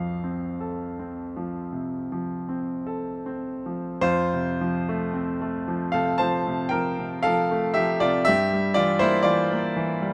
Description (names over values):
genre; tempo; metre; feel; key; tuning
classical, romantic nocturne for solo piano; 50-61 BPM; 4/4; rubato; F major; A4 = 440 Hz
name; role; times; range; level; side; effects
clear concert grand piano; solo; 0.0-10.1 s; F2 to A5; -25 LUFS; equal; none
room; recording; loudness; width
light reverb; none; -25 LUFS; mono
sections
0.0-4.0 A section; 4.0-10.1 B section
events
none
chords
0.0 F; 8.3 Edim/G